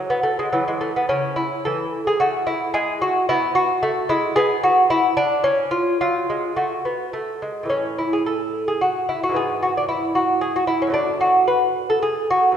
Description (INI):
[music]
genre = classical, baroque-style dance for lute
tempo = 103-114 BPM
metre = 3/4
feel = rubato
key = F# minor from 4.4 s, A major from 7.7 s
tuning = A4 = 439 Hz
[part]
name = lute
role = solo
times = 0.0-12.6 s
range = E2 to B4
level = -18 LUFS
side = equal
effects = none
[sound]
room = wet concert hall reverb, RT60 2.2 s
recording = recorded in a church or concert hall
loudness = -18 LUFS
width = side -8 dB against mid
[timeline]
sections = 0.0-7.7 A section; 7.7-12.6 A section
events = none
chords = 0.0 Eadd9 (rootless); 0.5 N.C.; 1.1 A/C#; 2.7 E/G#; 4.4 N.C.; 6.0 F#m; 7.7 A5; 9.4 E/G#; 11.0 F#madd11